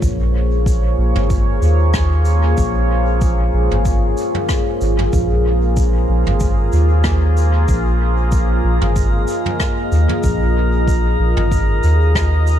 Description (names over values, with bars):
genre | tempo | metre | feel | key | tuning
ambient dub | 94 BPM | 4/4 | swing 55% on 16ths | Bb minor | A4 = 440 Hz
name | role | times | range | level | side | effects
deep dark ambient pad | sustained chords | 0.0-12.6 s | Bb3 to Eb5 | -20 LUFS | equal | chorus, built-in reverb
soft dub sub bass | bass | 0.0-12.6 s | Ab1 to Eb2 | -15 LUFS | equal | none
electronic kick drum | drums | 0.0-12.3 s | none | -19 LUFS | equal | none
vintage brush drum kit | drums | 0.0-12.6 s | rim click, shaker, toms | -26 LUFS | equal | dub echo
drifting glass-harmonics texture | texture | 5.8-12.6 s | Bb4 | -27 LUFS | right 2 dB | chorus, built-in reverb
room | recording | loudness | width
small room ambience | dark, warm production | -14 LUFS | side -10 dB against mid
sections
0.0-12.6 A section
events
none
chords
0.0 Bbm7